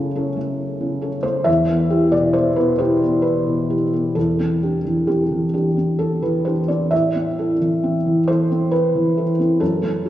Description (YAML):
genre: neoclassical minimalist piano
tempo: 67 BPM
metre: 3/4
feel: rubato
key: unclear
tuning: A4 = 440 Hz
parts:
  - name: felt-muted upright piano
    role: solo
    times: 0.0-10.1 s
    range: E2 to E5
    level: -17 LUFS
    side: equal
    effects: none
room: wet concert hall reverb, RT60 2.6 s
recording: worn, warbling old tape, cassette tape, warbly pitch drift, small room ambience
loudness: -16 LUFS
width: side -13 dB against mid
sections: 0.0-10.1 A section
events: none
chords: 0.0 F#m; 1.5 Em; 4.2 Cadd9/E; 6.9 Am